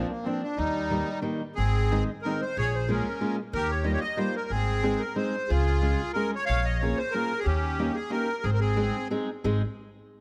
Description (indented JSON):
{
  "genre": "musette waltz",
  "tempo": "183 BPM",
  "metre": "3/4",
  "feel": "rubato",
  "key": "Ab major",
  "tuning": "A4 = 440 Hz",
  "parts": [
    { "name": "accordion", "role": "melody", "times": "0.0-9.1 s", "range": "G3 to F5", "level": "-32 LUFS", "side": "equal", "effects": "light tremolo tuning" },
    { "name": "fingerpicked steel-string acoustic guitar", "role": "accompaniment", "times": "0.0-9.6 s", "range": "Eb3 to Ab4", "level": "-33 LUFS", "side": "equal", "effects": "none" },
    { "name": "upright bass", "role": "bass", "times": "0.0-9.6 s", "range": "Ab1 to Eb2", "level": "-29 LUFS", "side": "equal", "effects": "none" }
  ],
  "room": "light reverb",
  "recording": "close, detailed microphones",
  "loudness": "-27 LUFS",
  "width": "mono",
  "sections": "0.0-1.6 A section; 1.6-9.4 B section",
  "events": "none",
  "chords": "0.0 Bbadd9; 0.6 Eb; 1.6 Ab; 2.6 Bbm7; 3.5 Ebadd9; 4.5 Ab; 5.5 Db; 6.5 Bbm7; 7.5 Eb7; 8.4 Ab"
}